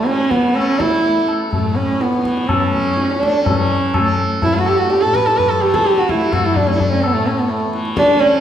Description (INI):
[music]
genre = indian classical, Hindustani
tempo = 126 BPM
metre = 4/4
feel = straight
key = A raga khamaj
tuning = A4 = 440 Hz
[part]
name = dark sarangi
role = melody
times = 0.0-8.4 s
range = A3 to B4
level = -15 LUFS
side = right 1 dB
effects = none
[part]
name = tanpura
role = drone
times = 0.0-8.4 s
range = A2 to A3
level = -24 LUFS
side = left 1 dB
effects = none
[part]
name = tabla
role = percussion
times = 0.1-8.4 s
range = none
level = -20 LUFS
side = left 3 dB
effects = none
[sound]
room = wet recital hall reverb, RT60 1.4 s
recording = heard from further back in the room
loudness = -14 LUFS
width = side -10 dB against mid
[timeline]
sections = 0.0-3.5 A section; 3.5-8.4 B section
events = speeding up 0.0-8.4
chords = none